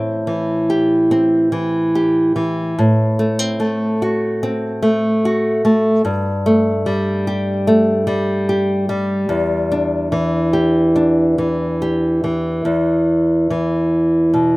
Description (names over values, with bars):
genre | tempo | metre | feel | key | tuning
folk, solo fingerstyle acoustic guitar | 72 BPM | 4/4 | rubato | E minor | A4 = 440 Hz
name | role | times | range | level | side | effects
nylon-string guitar | solo | 0.0-14.6 s | E2 to G4 | -14 LUFS | equal | none
room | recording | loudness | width
little or no reverb | recorded outdoors, with no room sound | -14 LUFS | side -21 dB against mid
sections
0.0-12.7 A section; 12.7-14.6 B section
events
none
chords
0.0 Am7; 2.8 Am6; 6.1 Gsus2; 9.3 Em7; 12.7 E5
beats
0.27 1.10 1.94 | 2.78 3.61 4.43 5.25 | 6.06 6.86 7.67 8.48 | 9.30 10.12 10.96 11.81 | 12.66 13.50 14.33